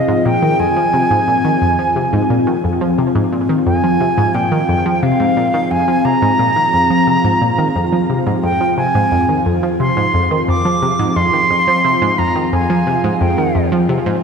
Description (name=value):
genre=ambient, sequencer-driven space music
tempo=88 BPM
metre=4/4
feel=straight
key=F minor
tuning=A4 = 440 Hz
part: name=silver concert flute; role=melody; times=0.0-13.7 s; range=Eb5 to D6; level=-16 LUFS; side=right 2 dB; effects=shimmer reverb, tape echo
part: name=evolving wavetable pad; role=sustained chords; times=0.0-14.2 s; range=F3 to Ab4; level=-17 LUFS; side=left 1 dB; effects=chorus, built-in reverb, shimmer reverb
part: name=analog pluck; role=riff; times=0.1-14.1 s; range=F2 to F3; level=-17 LUFS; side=equal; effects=chorus, shimmer reverb, tape echo
room=wet concert hall reverb, RT60 2.1 s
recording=cassette tape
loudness=-12 LUFS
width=side -6 dB against mid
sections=0.0-14.2 A section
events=none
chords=0.0 Fm7